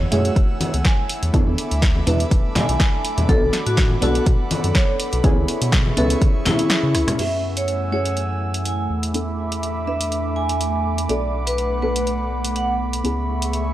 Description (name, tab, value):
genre	deep house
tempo	123 BPM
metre	4/4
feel	swing 54% on 16ths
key	F# minor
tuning	A4 = 439 Hz
part	airy breathy pad	sustained chords	0.0-13.7 s	A3 to E6	-29 LUFS	right 1 dB	chorus, vintage 12-bit sampler grit, sidechain pumping
part	deep mellow chord stab	stabs	0.0-13.7 s	A3 to B4	-26 LUFS	equal	chorus, sidechain pumping, analog delay
part	round analog bass	bass	0.0-13.7 s	E1 to C#3	-24 LUFS	equal	tube saturation
part	congas	percussion	0.0-7.2 s	none	-25 LUFS	left 1 dB	none
part	deep dark ambient pad	texture	0.0-13.7 s	A3 to G#5	-30 LUFS	left 1 dB	chorus, built-in reverb, sidechain pumping
part	vibraphone with hard mallets	melody	0.1-12.7 s	E4 to G#5	-26 LUFS	right 1 dB	analog delay
part	punchy analog drum machine	drums	0.1-13.6 s	crash cymbal, hi-hat, rim click, snare drum	-25 LUFS	equal	none
part	electronic kick drum	drums	0.4-6.3 s	none	-18 LUFS	equal	overdrive
room	light reverb, digital ambience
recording	dry, gritty hardware recording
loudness	-18 LUFS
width	side -13 dB against mid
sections	0.0-7.2 A section; 7.2-13.7 B section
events	kick drops out 6.7-7.2; drum fill 6.9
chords	0.0 F#m9; 1.1 E7sus4; 3.3 Bm7; 5.2 C#m7; 7.2 F#m9; 8.9 E7sus4; 11.1 Bm7; 13.0 C#m7